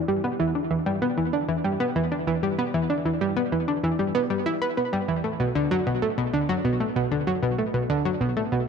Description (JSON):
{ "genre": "ambient", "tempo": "96 BPM", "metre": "4/4", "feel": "straight", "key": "E minor", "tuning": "A4 = 440 Hz", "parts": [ { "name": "analog pluck", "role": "solo", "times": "0.1-8.6 s", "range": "B2 to B4", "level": "-22 LUFS", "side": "equal", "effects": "chorus, cassette tape, tape echo" } ], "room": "moderate plate reverb, RT60 3.0 s", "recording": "none", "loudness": "-22 LUFS", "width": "side -6 dB against mid", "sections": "0.0-8.7 A section", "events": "none", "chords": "none" }